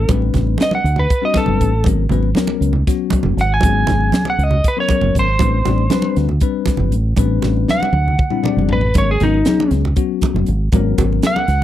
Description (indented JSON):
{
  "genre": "electric jazz fusion",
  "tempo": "237 BPM (eighths)",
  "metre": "7/8",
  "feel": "straight",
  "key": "unclear",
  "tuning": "A4 = 440 Hz",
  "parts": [
    { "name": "lightly driven lead guitar", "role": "melody", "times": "0.0-11.6 s", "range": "D#4 to G#5", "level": "-19 LUFS", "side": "right 1 dB", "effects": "slapback echo" },
    { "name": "fingered electric bass", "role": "bass", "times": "0.0-11.6 s", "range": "F#1 to D2", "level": "-16 LUFS", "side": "equal", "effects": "none" },
    { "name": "bell-like tine electric piano", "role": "accompaniment", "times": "0.1-11.4 s", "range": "F#3 to D5", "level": "-21 LUFS", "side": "left 14 dB", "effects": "none" },
    { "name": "crisp fusion drum kit", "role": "drums", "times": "0.1-11.6 s", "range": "hi-hat, kick drum, snare drum, toms", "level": "-18 LUFS", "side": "right 1 dB", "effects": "none" },
    { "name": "congas", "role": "percussion", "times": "0.1-11.5 s", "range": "none", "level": "-23 LUFS", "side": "right 4 dB", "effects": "none" }
  ],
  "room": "little or no reverb",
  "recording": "dry, close 1970s-style studio recording",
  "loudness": "-14 LUFS",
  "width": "side -12 dB against mid",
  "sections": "0.0-11.6 A section",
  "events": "lead electric guitar solo 0.0-11.6; drum fill 7.4-9.0",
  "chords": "0.0 Am11; 1.9 G#m11; 5.4 Am11; 9.0 G#m11"
}